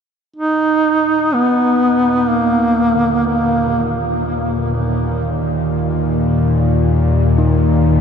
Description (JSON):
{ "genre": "ambient", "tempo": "62 BPM", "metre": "4/4", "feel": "straight", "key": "unclear", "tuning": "A4 = 440 Hz", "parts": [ { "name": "warm duduk", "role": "melody", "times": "0.4-4.0 s", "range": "Bb3 to Eb4", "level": "-16 LUFS", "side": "right 1 dB", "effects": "diffuse ambient delay" }, { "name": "bowed-like drone", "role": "drone", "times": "2.0-8.0 s", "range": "Eb2 to Bb2", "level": "-16 LUFS", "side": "left 1 dB", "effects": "built-in reverb" }, { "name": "gamelan-type bossed gongs", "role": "arpeggios", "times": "2.9-8.0 s", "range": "Bb2 to Eb4", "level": "-26 LUFS", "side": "left 1 dB", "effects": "diffuse ambient delay" } ], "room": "wet huge ambient reverb, RT60 7.4 s", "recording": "dark, warm production", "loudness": "-13 LUFS", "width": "side -7 dB against mid", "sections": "0.4-8.0 A section", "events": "fade-in on synth drone 0.4-8.0; fade-in on kettle gongs 0.4-8.0", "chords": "0.4 Eb5" }